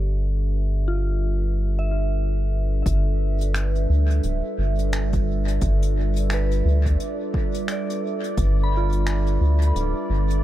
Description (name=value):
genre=ambient dub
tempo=87 BPM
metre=4/4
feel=swing 60% on 16ths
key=G mixolydian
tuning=A4 = 436 Hz
part: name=warbly tape-like pad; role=sustained chords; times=0.0-10.4 s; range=G3 to E5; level=-29 LUFS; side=right 2 dB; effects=chorus, built-in reverb
part: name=soft synth bell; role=arpeggios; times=0.0-10.4 s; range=F4 to B5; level=-32 LUFS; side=left 1 dB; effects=chorus, analog delay
part: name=round analog bass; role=bass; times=0.0-10.4 s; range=D1 to D2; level=-20 LUFS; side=equal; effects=none
part: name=electronic kick drum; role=drums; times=2.9-8.5 s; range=none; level=-25 LUFS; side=equal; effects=none
part: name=soft brush drum kit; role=drums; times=2.9-10.4 s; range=finger snaps, hi-hat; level=-34 LUFS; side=left 1 dB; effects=dub echo
part: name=bubbling stepped-filter texture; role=texture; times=2.9-10.4 s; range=D5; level=-38 LUFS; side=right 3 dB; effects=chorus, built-in reverb
room=small room ambience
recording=echo-heavy mix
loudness=-20 LUFS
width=side -14 dB against mid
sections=0.0-2.9 A section; 2.9-10.4 B section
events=filter sweep on ambient pad 0.0-2.9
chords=0.0 G13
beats=| 0.10 0.79 1.48 2.17 | 2.86 3.55 4.24 4.93 | 5.62 6.31 7.00 7.69 | 8.38 9.07 9.76